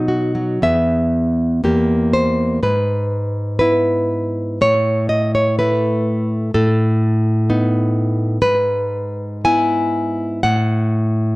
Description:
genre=romantic piece for solo classical guitar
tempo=52-65 BPM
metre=2/4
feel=rubato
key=E major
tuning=A4 = 440 Hz
part: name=nylon-string guitar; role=solo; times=0.0-11.4 s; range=E2 to G#5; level=-15 LUFS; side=equal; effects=slapback echo
room=light reverb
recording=dry, close 1970s-style studio recording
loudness=-15 LUFS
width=side -21 dB against mid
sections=0.6-11.4 A section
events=none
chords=0.0 B; 0.6 E; 1.6 Edim; 2.6 E/G#; 4.6 A5; 6.5 B7/A; 8.4 E/G#; 10.4 N.C.

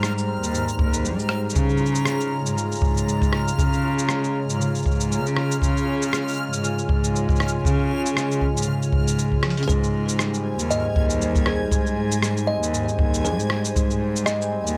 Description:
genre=folktronica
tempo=118 BPM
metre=4/4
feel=swing 56% on 16ths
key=unclear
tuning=A4 = 440 Hz
part: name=warbly tape-like pad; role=sustained chords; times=0.0-14.8 s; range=G3 to Bb5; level=-33 LUFS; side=equal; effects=chorus, built-in reverb
part: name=concert harp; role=arpeggios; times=0.0-14.8 s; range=Ab2 to F4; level=-29 LUFS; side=equal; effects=digital delay
part: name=warm cello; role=bass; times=0.0-14.8 s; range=Eb2 to F3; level=-27 LUFS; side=equal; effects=none
part: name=lo-fi sampler-style drum kit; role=drums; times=0.0-14.8 s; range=cabasa, hi-hat, rim click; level=-30 LUFS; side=equal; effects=none
part: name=backwards swelling texture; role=texture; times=0.0-14.8 s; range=F6 to Ab6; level=-38 LUFS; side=equal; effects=built-in reverb
part: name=kick drum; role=drums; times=0.8-13.9 s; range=none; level=-26 LUFS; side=equal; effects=none
part: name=music box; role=second line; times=9.7-14.5 s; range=Ab4 to Eb5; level=-30 LUFS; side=equal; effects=digital delay
room=light reverb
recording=none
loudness=-22 LUFS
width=mono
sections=0.0-14.8 A section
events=drum fill 9.4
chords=0.0 Abmaj7; 1.5 Db6; 9.7 Abmaj7

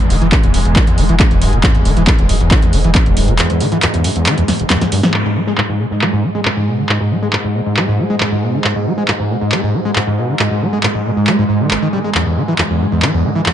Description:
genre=driving peak-time techno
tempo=137 BPM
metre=4/4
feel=straight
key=unclear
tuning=A4 = 440 Hz
part: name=screaming distorted acid line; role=riff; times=0.0-13.5 s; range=E1 to G#3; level=-16 LUFS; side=equal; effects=distortion, analog chorus, cassette tape, sidechain pumping, tape echo
part: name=swarming drone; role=drone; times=0.0-13.5 s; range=G#2 to G#3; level=-20 LUFS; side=right 1 dB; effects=built-in reverb, sidechain pumping
part: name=punchy analog drum machine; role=drums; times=0.0-13.5 s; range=handclaps, hi-hat, snare drum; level=-18 LUFS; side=equal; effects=low-pass filter on hats, low-pass filter on snare, low-pass filter on room, dub echo
part: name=saturated sub bass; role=bass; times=0.1-3.4 s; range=E1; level=-15 LUFS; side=equal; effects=overdrive, sidechain pumping, low-pass filter
part: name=electronic kick drum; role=drums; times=0.3-3.0 s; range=none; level=-13 LUFS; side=equal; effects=none
room=moderate plate reverb, RT60 2.2 s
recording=echo-heavy mix, nothing above 10.7 kHz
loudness=-12 LUFS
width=side -10 dB against mid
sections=0.0-5.1 A section; 5.1-13.5 B section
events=filter sweep on acid bass 0.0-5.1, 5.1-13.5; drum fill 4.5-5.1; band accent 5.0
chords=none

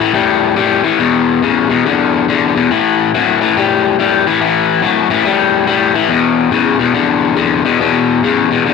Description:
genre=blues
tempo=141 BPM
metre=4/4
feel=swing 65% on 8ths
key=unclear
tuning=A4 = 438 Hz
part: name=crunchy overdriven guitar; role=solo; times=0.0-8.7 s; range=E2 to G3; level=-10 LUFS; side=left 7 dB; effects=none
room=moderate echo chamber reverb, RT60 1.4 s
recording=none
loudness=-10 LUFS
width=side -4 dB against mid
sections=0.0-8.7 A section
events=none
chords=0.0 A5; 1.0 E5; 2.7 A5; 6.1 E5

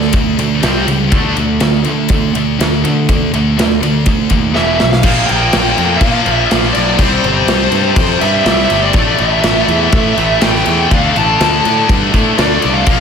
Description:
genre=hard rock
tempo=123 BPM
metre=4/4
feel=straight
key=D minor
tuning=A4 = 440 Hz
part: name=heavy high-gain guitar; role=riff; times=0.0-13.0 s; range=E2 to D4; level=-17 LUFS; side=left 11 dB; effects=distortion
part: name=tight distorted guitar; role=riff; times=0.0-13.0 s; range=E2 to D4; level=-18 LUFS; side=right 10 dB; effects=distortion
part: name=fuzz picked electric bass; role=bass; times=0.0-13.0 s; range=E1 to D3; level=-17 LUFS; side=equal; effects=overdrive
part: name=big rock drum kit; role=drums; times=0.0-13.0 s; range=crash cymbal, kick drum, ride cymbal, snare drum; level=-15 LUFS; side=equal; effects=none
part: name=high-gain lead guitar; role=melody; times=4.5-13.0 s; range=C5 to A5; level=-16 LUFS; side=equal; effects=distortion, slapback echo
room=moderate scoring stage reverb, RT60 1.5 s, small room ambience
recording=big arena sound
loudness=-10 LUFS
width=side -6 dB against mid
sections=0.0-5.0 A section; 5.0-13.0 B section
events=drum fill 4.6-5.0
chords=0.0 D5; 0.6 C5; 1.1 D5; 4.6 E5; 5.0 Bb5; 7.0 C5; 9.0 A5; 10.9 D5

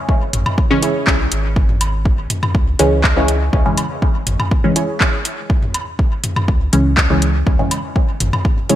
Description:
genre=dub techno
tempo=122 BPM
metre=4/4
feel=straight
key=C# minor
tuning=A4 = 440 Hz
part: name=electronic kick drum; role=drums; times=0.1-8.6 s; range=none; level=-16 LUFS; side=equal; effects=overdrive
part: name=soft dub sub bass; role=bass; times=0.3-8.3 s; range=G#1 to C#2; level=-18 LUFS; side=equal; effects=sidechain pumping
part: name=deep house drum kit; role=drums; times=0.3-8.8 s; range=handclaps, hi-hat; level=-19 LUFS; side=equal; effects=overdrive, gated reverb, dub echo
part: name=electronic toms and woodblock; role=percussion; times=0.3-8.4 s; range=none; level=-23 LUFS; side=equal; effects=overdrive, sidechain pumping on toms, sidechain pumping on perc, gated reverb, dub echo
part: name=filtered dub chord stab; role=stabs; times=0.7-8.8 s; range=C#3 to C#4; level=-18 LUFS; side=equal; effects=chorus, phaser, sidechain pumping, dub echo
part: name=warbly dusty pluck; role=riff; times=0.8-8.8 s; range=E4 to C#5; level=-26 LUFS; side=right 3 dB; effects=chorus, cassette tape, sidechain pumping, dub echo
room=light reverb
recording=bright 1980s-style digital production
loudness=-14 LUFS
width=side -12 dB against mid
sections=0.0-8.8 A section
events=filter sweep on synth stab 0.0-8.8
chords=0.0 C#m

